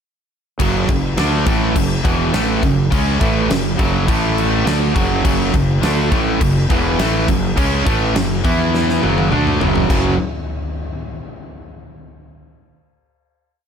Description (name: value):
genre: hard rock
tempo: 103 BPM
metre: 4/4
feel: straight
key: F# minor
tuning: A4 = 440 Hz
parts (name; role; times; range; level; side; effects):
- high-gain distorted guitar; riff; 0.6-10.1 s; E2 to E4; -22 LUFS; left 10 dB; distortion
- overdriven electric guitar; riff; 0.6-10.1 s; E2 to E4; -22 LUFS; equal; none
- sludgy distorted guitar; riff; 0.6-10.1 s; E2 to E4; -20 LUFS; right 9 dB; overdrive
- fuzz fingered electric bass; bass; 0.6-10.2 s; E1 to E2; -21 LUFS; equal; overdrive
- huge arena drum kit; drums; 0.6-10.0 s; crash cymbal, kick drum, snare drum, toms; -20 LUFS; left 1 dB; none
room: light reverb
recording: none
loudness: -14 LUFS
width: side -7 dB against mid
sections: 0.6-9.9 riff; 9.9-12.2 final chord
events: drum fill 8.7-9.9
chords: 0.6 F#m; 4.1 A5; 4.7 F#m; 8.4 E5; 9.0 F#m; 9.9 F#5